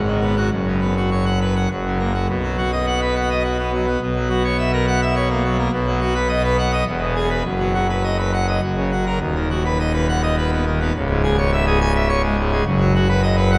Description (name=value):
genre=classical, organ toccata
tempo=104 BPM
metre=3/4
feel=straight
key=B major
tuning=A4 = 441 Hz
part: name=pipe organ, full organ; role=solo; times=0.0-13.6 s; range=C#1 to G#5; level=-19 LUFS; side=equal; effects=none
room=wet cathedral reverb, RT60 5.0 s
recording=none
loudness=-20 LUFS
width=mono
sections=0.0-2.3 A section; 2.3-13.6 B section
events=none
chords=0.0 G#m7; 0.5 F#sus4; 1.7 F#; 2.3 B; 4.0 F#7/B; 5.7 B; 6.9 E; 7.4 B/F#; 8.6 F#; 9.2 B/D#; 10.9 C#m; 12.7 B/F#